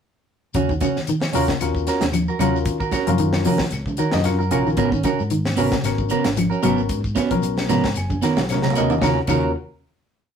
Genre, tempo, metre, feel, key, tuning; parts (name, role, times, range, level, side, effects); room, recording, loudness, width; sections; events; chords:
afrobeat; 113 BPM; 4/4; swing 55% on 16ths; Eb minor; A4 = 441 Hz
clean electric guitar; stabs; 0.5-9.5 s; Cb4 to Bb4; -22 LUFS; right 6 dB
fingered electric bass; bass; 0.5-9.5 s; Gb1 to Eb3; -26 LUFS; left 1 dB
tight funk drum kit; drums; 0.5-9.4 s; crash cymbal, hi-hat, kick drum, snare drum; -27 LUFS; left 1 dB
shekere; percussion; 0.5-9.4 s; -36 LUFS; left 6 dB
mellow electric guitar; arpeggios; 0.6-9.4 s; Db3 to Gb3; -24 LUFS; left 2 dB
congas; percussion; 0.6-9.4 s; -27 LUFS; right 3 dB
claves; percussion; 0.8-9.4 s; -35 LUFS; left 5 dB
tine electric piano; accompaniment; 1.3-9.5 s; Cb4 to Bb5; -25 LUFS; left 6 dB; overdrive
wet studio reverb, RT60 0.5 s; rough rehearsal-room recording; -18 LUFS; side -7 dB against mid
0.5-9.0 groove; 9.0-10.4 final chord
tine electric piano fill 3.7-4.8, 7.4-9.0; drum fill 8.4-9.0
0.5 Ebm7; 4.8 Abm11; 9.0 Ebm7